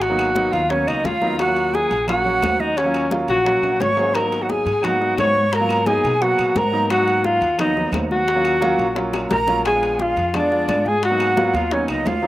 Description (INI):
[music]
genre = Afro-Cuban jazz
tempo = 174 BPM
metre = 4/4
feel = straight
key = Eb minor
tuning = A4 = 440 Hz
[part]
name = breathy alto saxophone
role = melody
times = 0.0-12.3 s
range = Db4 to Db5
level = -20 LUFS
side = left 2 dB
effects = slapback echo
[part]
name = jazz flute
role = second line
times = 0.0-12.3 s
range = Db5 to Db6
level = -23 LUFS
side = right 4 dB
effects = slapback echo
[part]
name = upright bass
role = bass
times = 0.0-12.3 s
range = Ab1 to Cb3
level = -28 LUFS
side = equal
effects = none
[part]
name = bongos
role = percussion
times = 0.0-12.2 s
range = none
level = -30 LUFS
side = left 5 dB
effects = slapback echo
[part]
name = congas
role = percussion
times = 0.0-12.2 s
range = none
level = -30 LUFS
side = left 1 dB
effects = none
[part]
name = timbales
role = percussion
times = 0.0-12.2 s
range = none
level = -34 LUFS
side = right 4 dB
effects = slapback echo
[part]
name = clear concert grand piano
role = accompaniment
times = 0.1-12.3 s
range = Gb3 to Ab4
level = -24 LUFS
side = right 2 dB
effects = slapback echo
[part]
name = claves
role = percussion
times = 0.2-12.1 s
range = none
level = -34 LUFS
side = left 6 dB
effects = slapback echo
[sound]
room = little or no reverb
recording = recorded outdoors, with no room sound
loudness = -16 LUFS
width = side -15 dB against mid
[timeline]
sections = 0.0-12.3 A section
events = drum fill 3.6-4.1, 9.1-9.7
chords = 0.0 Abm7; 1.4 Ebm7; 4.1 Abm7; 8.3 Ebm7; 9.7 Bb7b9; 11.0 Abm7